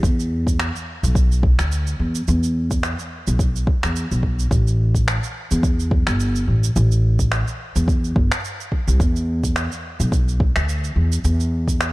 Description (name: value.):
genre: organic downtempo.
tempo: 107 BPM.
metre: 4/4.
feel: swing 56% on 16ths.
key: E minor.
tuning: A4 = 440 Hz.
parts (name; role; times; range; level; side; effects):
upright bass; bass; 0.0-11.9 s; G1 to E2; -19 LUFS; equal; none.
electronic kick drum; drums; 0.0-11.8 s; none; -20 LUFS; equal; none.
electronic shaker and finger snaps; drums; 0.0-11.9 s; none; -27 LUFS; right 1 dB; none.
room: little or no reverb.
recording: dark, warm production.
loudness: -17 LUFS.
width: side -19 dB against mid.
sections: 0.0-11.9 A section.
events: none.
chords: none.